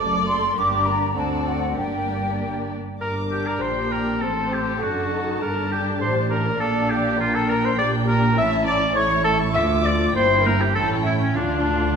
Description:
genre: quick classical-period movement for symphony orchestra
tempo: 101 BPM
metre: 2/4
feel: straight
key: G minor, D minor from 7.8 s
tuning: A4 = 438 Hz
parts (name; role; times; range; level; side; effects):
- muted chamber violin section; melody; 0.0-11.9 s; A4 to D6; -34 LUFS; left 3 dB; none
- flute section; second line; 0.0-2.7 s; F#5 to D6; -23 LUFS; left 1 dB; none
- muted chamber violin section; second line; 0.0-12.0 s; C#4 to E5; -28 LUFS; left 5 dB; none
- muted chamber viola section; accompaniment; 0.0-12.0 s; A3 to D5; -26 LUFS; equal; none
- muted chamber cello section; bass; 0.0-12.0 s; D2 to D3; -27 LUFS; equal; none
- muted chamber double bass section; bass; 0.0-12.0 s; F#1 to D2; -28 LUFS; right 2 dB; none
- clear oboe; second line; 3.0-12.0 s; C#4 to E5; -23 LUFS; right 1 dB; none
- timpani; percussion; 11.4-12.0 s; D3; -35 LUFS; equal; none
room: wet scoring stage reverb, RT60 1.5 s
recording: minimal, uncompressed stereo recording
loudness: -19 LUFS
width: side -6 dB against mid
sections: 0.0-3.0 A section; 3.0-12.0 A section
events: timpani fill 11.4-12.0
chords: 0.0 D/F#; 0.6 Gm; 1.2 D7; 1.8 Gm; 4.2 D7/A; 5.4 G5; 6.6 Gm/Bb; 8.4 A; 9.6 Dm; 10.2 Edim/G; 10.8 A7; 11.4 Dm

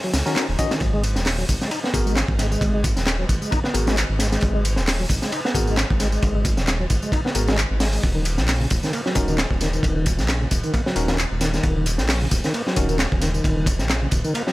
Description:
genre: breakbeat, breaks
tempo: 133 BPM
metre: 4/4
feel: swing 55% on 16ths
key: G# minor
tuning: A4 = 440 Hz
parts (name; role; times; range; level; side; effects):
- bright tonewheel organ; riff; 0.0-14.5 s; C#3 to D#4; -27 LUFS; equal; chorus vibrato, slow rotary speaker, digital delay
- crunchy breakbeat drum kit; drums; 0.0-14.5 s; hi-hat, kick drum, ride cymbal, snare drum; -22 LUFS; equal; none
- dark detuned saw bass; bass; 0.1-14.2 s; D#1 to C#2; -23 LUFS; equal; none
- garage drum kit; drums; 0.1-14.4 s; handclaps, ride cymbal, tambourine; -28 LUFS; equal; none
- tine electric piano; stabs; 0.3-13.0 s; B3 to D#5; -28 LUFS; left 2 dB; medium stereo tremolo, digital delay
room: little or no reverb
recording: none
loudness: -19 LUFS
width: side -18 dB against mid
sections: 0.0-14.5 A section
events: kick drops out 14.3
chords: 0.0 D#m7; 0.8 G#m7; 8.0 D#m7

